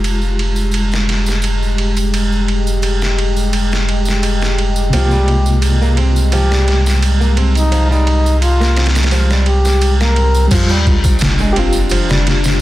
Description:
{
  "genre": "trip hop",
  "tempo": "86 BPM",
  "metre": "4/4",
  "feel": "straight",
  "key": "F dorian",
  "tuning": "A4 = 440 Hz",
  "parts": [
    { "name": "mellow reed electric piano", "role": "accompaniment", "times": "0.0-12.6 s", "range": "C3 to G4", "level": "-22 LUFS", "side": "equal", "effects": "medium tremolo, harmonic tremolo, tape echo" },
    { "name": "deep dark ambient pad", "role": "sustained chords", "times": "0.0-12.6 s", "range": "Ab3 to G4", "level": "-21 LUFS", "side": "left 1 dB", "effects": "chorus, built-in reverb, vintage 12-bit sampler grit" },
    { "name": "soft dub sub bass", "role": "bass", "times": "0.0-12.6 s", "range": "F1 to C2", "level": "-14 LUFS", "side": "equal", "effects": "none" },
    { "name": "trip hop sampler-style drum kit", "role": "drums", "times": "0.0-12.6 s", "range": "crash cymbal, kick drum, ride cymbal, snare drum", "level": "-19 LUFS", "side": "right 1 dB", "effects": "high-pass filter on kick, high-pass filter on cymbals, high-pass filter on snare, high-pass filter on room" },
    { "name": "tambourine", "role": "percussion", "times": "0.0-12.6 s", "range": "none", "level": "-28 LUFS", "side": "right 4 dB", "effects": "none" },
    { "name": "trumpet with bucket mute", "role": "melody", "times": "4.9-10.5 s", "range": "Eb4 to Bb4", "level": "-21 LUFS", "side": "left 1 dB", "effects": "tape echo" },
    { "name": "flamenco guitar", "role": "arpeggios", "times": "4.9-12.2 s", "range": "F3 to C4", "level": "-23 LUFS", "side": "right 3 dB", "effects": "tape echo" },
    { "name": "sub drop", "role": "sound effects", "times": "10.5-12.6 s", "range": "none", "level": "-19 LUFS", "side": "equal", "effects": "none" }
  ],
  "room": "light reverb",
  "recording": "dense, heavily limited modern master, vinyl crackle",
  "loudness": "-12 LUFS",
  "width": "side -15 dB against mid",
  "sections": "0.0-10.5 A section; 10.5-12.6 B section",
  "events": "impact 10.5-12.6",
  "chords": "0.0 Fmadd9; 4.9 C7sus4; 10.5 Fsus2"
}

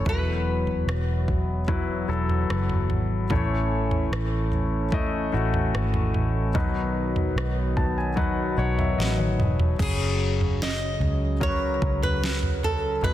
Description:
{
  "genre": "pop ballad",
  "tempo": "74 BPM",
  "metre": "4/4",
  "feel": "straight",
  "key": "unclear",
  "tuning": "A4 = 441 Hz",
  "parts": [
    { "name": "flamenco guitar", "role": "melody", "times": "0.0-2.5, 9.8-13.1 s", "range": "G#4 to D#5", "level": "-29 LUFS", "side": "right 1 dB", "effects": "ping-pong delay" },
    { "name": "warm concert grand piano", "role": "accompaniment", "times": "0.0-13.1 s", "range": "A2 to A5", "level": "-28 LUFS", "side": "left 5 dB", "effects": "none" },
    { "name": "mellow brass ensemble", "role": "sustained chords", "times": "0.0-13.1 s", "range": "C#3 to C#4", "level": "-32 LUFS", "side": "right 2 dB", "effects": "none" },
    { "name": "vintage muted fingered electric bass", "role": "bass", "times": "0.0-13.1 s", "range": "E1 to C#2", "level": "-26 LUFS", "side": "equal", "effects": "none" },
    { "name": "smooth R&B drum kit", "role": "drums", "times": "0.1-13.1 s", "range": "crash cymbal, kick drum, rim click, snare drum, toms", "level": "-28 LUFS", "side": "right 1 dB", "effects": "overdrive" }
  ],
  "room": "light reverb",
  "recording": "dense, heavily limited modern master",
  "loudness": "-22 LUFS",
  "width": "side -13 dB against mid",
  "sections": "0.0-9.8 A section; 9.8-13.1 B section",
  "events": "grand piano fill 7.4-9.8; drum fill 9.0-9.8",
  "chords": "0.1 Esus2; 3.3 A; 6.6 B; 9.8 F#sus2"
}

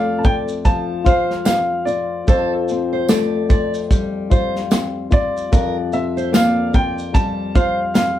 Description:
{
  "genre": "acoustic pop",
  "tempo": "74 BPM",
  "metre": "4/4",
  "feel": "swing 60% on 16ths",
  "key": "F major",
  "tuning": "A4 = 440 Hz",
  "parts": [
    { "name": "dark upright piano", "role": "melody", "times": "0.0-8.2 s", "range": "C5 to A5", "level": "-21 LUFS", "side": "right 1 dB", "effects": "none" },
    { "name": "flamenco guitar", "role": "accompaniment", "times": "0.0-8.2 s", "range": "F2 to F4", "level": "-21 LUFS", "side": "left 4 dB", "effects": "none" },
    { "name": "fingerpicked steel-string acoustic guitar", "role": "arpeggios", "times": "0.0-7.8 s", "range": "A4 to D5", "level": "-25 LUFS", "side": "right 2 dB", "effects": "none" },
    { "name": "loose indie drum kit", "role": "drums", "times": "0.2-8.2 s", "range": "kick drum, shaker, snare drum", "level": "-17 LUFS", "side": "equal", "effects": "none" },
    { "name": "tambourine", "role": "percussion", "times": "1.5-8.2 s", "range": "none", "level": "-31 LUFS", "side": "right 5 dB", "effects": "none" }
  ],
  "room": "moderate small room reverb, RT60 0.5 s",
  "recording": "heard from further back in the room",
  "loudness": "-16 LUFS",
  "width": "side -12 dB against mid",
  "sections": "0.0-8.2 A section",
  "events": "none",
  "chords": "0.0 Dm7/F; 2.3 Fadd9; 5.5 C7sus4/F"
}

